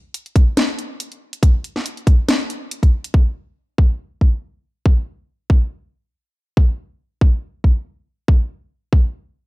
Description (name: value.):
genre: dubstep.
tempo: 140 BPM.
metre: 4/4.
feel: swing 54% on 16ths, half-time.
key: none.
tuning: none.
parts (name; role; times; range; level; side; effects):
garage drum kit; drums; 0.1-3.1 s; hi-hat, snare drum; -20 LUFS; left 1 dB; small room ambience.
electronic kick drum; drums; 0.4-9.0 s; none; -12 LUFS; equal; small room ambience.
room: little or no reverb.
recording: dark, warm production.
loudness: -16 LUFS.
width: side -20 dB against mid.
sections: 0.0-3.1 A section; 3.1-9.5 B section.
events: none.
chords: none.